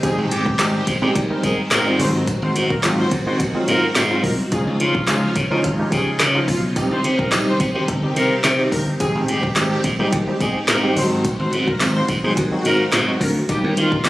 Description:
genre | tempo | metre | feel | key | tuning
dance-pop | 107 BPM | 4/4 | straight | Ab major | A4 = 440 Hz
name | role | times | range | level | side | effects
warm horn section | melody | 0.0-14.1 s | F3 to C5 | -26 LUFS | left 1 dB | sidechain pumping, dub echo
warm analog keys | accompaniment | 0.0-14.1 s | Eb3 to Bb4 | -23 LUFS | equal | chorus
phased string machine | sustained chords | 0.0-14.1 s | C3 to Bb4 | -27 LUFS | equal | ensemble chorus, phaser, sidechain pumping
glassy slap bass | bass | 0.0-14.1 s | G1 to Eb3 | -20 LUFS | equal | sidechain pumping
deep house drum kit | drums | 0.0-14.1 s | handclaps, hi-hat, kick drum, snare drum | -22 LUFS | equal | none
tambourine | percussion | 0.0-14.1 s | none | -36 LUFS | left 1 dB | none
room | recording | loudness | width
light reverb | recorded on a phone in the room, club reverb | -16 LUFS | side -17 dB against mid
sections
0.0-14.1 A section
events
none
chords
0.0 Abmaj7; 2.0 Ab7; 4.5 Dbadd9; 6.8 Cm; 9.0 Abmaj7; 11.0 Ab7; 13.5 Eb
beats
| 0.03 0.59 1.15 1.72 | 2.27 2.84 3.40 3.96 | 4.52 5.08 5.64 6.20 | 6.76 7.32 7.88 8.44 | 9.00 9.56 10.13 10.69 | 11.25 11.81 12.37 12.93 | 13.49 14.05

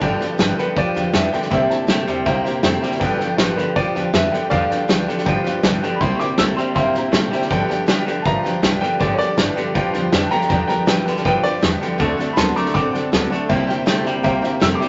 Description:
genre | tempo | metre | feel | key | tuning
rockabilly | 160 BPM | 4/4 | straight | G mixolydian | A4 = 440 Hz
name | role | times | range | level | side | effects
honky-tonk upright piano | accompaniment | 0.0-14.9 s | A4 to Bb5 | -29 LUFS | equal | none
picked steel-string acoustic guitar | accompaniment | 0.0-14.9 s | G2 to A4 | -27 LUFS | equal | none
twangy electric guitar | riff | 0.0-14.9 s | G2 to C4 | -26 LUFS | equal | spring reverb
upright bass | bass | 0.0-14.8 s | G1 to B2 | -31 LUFS | equal | none
vintage drum kit | drums | 0.0-14.9 s | hi-hat, kick drum, snare drum | -23 LUFS | equal | none
warm upright piano | melody | 0.5-14.9 s | Bb4 to E6 | -25 LUFS | equal | none
room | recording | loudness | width
wet club reverb, RT60 0.7 s | nothing above 7.7 kHz | -19 LUFS | mono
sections
0.0-14.9 A section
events
upright piano solo 0.0-14.9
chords
0.0 G7; 1.5 C7; 3.0 G7; 6.0 C7; 7.5 G7; 12.0 D7; 13.5 C7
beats
| 0.02 0.39 0.77 1.14 | 1.51 1.89 2.26 2.64 | 3.01 3.39 3.76 4.14 | 4.51 4.89 5.26 5.63 | 6.01 6.38 6.76 7.13 | 7.51 7.88 8.26 8.63 | 9.01 9.38 9.76 10.13 | 10.50 10.88 11.25 11.63 | 12.00 12.38 12.75 13.12 | 13.50 13.87 14.25 14.62

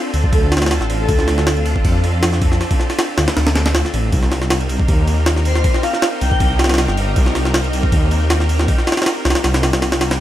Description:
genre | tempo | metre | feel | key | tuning
drum and bass, jungle | 158 BPM | 4/4 | swing 53% on 16ths | unclear | A4 = 436 Hz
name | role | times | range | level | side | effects
soft string machine | sustained chords | 0.0-10.2 s | C4 to Bb4 | -24 LUFS | equal | ensemble chorus
dark detuned saw bass | bass | 0.1-10.2 s | G1 to F2 | -17 LUFS | equal | none
jungle sampler-style drum kit | drums | 0.1-10.2 s | kick drum, ride cymbal, snare drum | -17 LUFS | equal | studio reverb
airy dreamy lead | melody | 0.3-1.5, 5.5-6.6 s | A4 to G5 | -25 LUFS | left 1 dB | chorus, phaser, dub echo
room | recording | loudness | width
little or no reverb | none | -14 LUFS | side -13 dB against mid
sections
0.0-10.2 A section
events
drop 0.0-10.2; kick drops out 9.4-10.2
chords
0.0 Dm7; 4.1 Cm7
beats
0.33 0.71 | 1.09 1.47 1.85 2.23 | 2.61 2.99 3.37 3.75 | 4.12 4.50 4.88 5.26 | 5.64 6.02 6.40 6.78 | 7.16 7.54 7.92 8.30 | 8.68 9.06 9.44 9.82

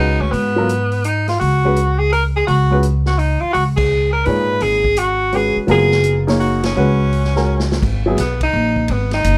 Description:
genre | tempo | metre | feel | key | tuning
modal jazz | 168 BPM | 3/4 | swing 65% on 8ths | unclear | A4 = 438 Hz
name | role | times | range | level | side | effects
clear tenor saxophone | melody | 0.0-9.4 s | B3 to B4 | -20 LUFS | equal | none
warm baby grand piano | accompaniment | 0.0-8.2 s | A#2 to C#5 | -22 LUFS | equal | none
upright bass | bass | 0.0-9.4 s | F#1 to G#2 | -20 LUFS | equal | none
vintage drum kit | drums | 0.3-9.4 s | crash cymbal, hi-hat, kick drum, ride cymbal, snare drum | -29 LUFS | equal | none
room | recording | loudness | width
light reverb | none | -16 LUFS | mono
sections
0.0-7.8 A section; 7.8-9.4 B section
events
band accent 3.7, 6.6; drum fill 7.5-7.8; tenor saxophone solo 7.8-9.4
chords
0.0 C#13sus4; 7.8 F#sus2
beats
| 0.34 0.69 1.05 | 1.41 1.76 2.12 | 2.48 2.84 3.19 | 3.55 3.91 4.26 | 4.62 4.98 5.33 | 5.69 6.05 6.40 | 6.76 7.12 7.47 | 7.83 8.19 8.54 | 8.90 9.25

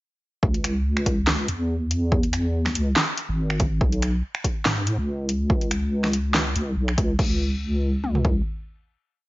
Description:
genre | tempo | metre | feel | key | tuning
deep dubstep | 142 BPM | 4/4 | swing 54% on 16ths, half-time | C# minor | A4 = 441 Hz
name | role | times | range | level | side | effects
deep soft wobble bass | bass | 0.4-8.4 s | G#1 to G#2 | -23 LUFS | equal | chorus
deep house drum kit | drums | 0.4-8.4 s | kick drum, toms | -23 LUFS | equal | overdrive
deep house drum kit | drums | 0.5-7.3 s | crash cymbal, finger snaps, handclaps, hi-hat, snare drum | -25 LUFS | equal | overdrive
room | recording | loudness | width
digital ambience | nothing above 7.5 kHz | -21 LUFS | side -18 dB against mid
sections
0.4-7.2 drop; 7.2-9.3 final note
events
drop 0.4-7.2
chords
none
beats
| 0.43 0.85 1.27 1.70 | 2.12 2.54 2.96 3.39 | 3.81 4.23 4.65 5.08 | 5.50 5.92 6.34 6.77 | 7.19 7.61 8.03

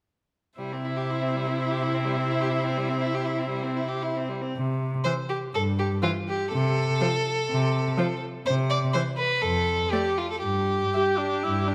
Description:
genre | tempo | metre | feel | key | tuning
quick classical-period movement for string quartet | 122 BPM | 4/4 | rubato | C major | A4 = 440 Hz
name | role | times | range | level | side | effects
warm violin | melody | 0.6-11.0 s | C5 to E5 | -39 LUFS | equal | none
rich violin | second line | 0.6-11.7 s | G3 to D5 | -30 LUFS | equal | none
warm viola | accompaniment | 0.6-11.7 s | E3 to G4 | -33 LUFS | equal | none
rich cello | bass | 0.6-11.7 s | F2 to C3 | -30 LUFS | equal | none
room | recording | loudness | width
moderate scoring stage reverb, RT60 2.1 s | none | -26 LUFS | mono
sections
0.6-4.6 A section; 4.6-11.7 B section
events
none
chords
0.6 C; 6.5 F/C (rootless); 8.5 N.C.; 9.4 Dm/F (rootless); 10.4 Em7/G (rootless)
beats
| 0.59 1.10 1.59 2.07 | 2.55 3.03 3.52 4.03 | 4.55 5.05 5.54 6.03 | 6.53 7.02 7.50 7.98 | 8.47 8.95 9.44 9.93 | 10.43 10.94 11.45

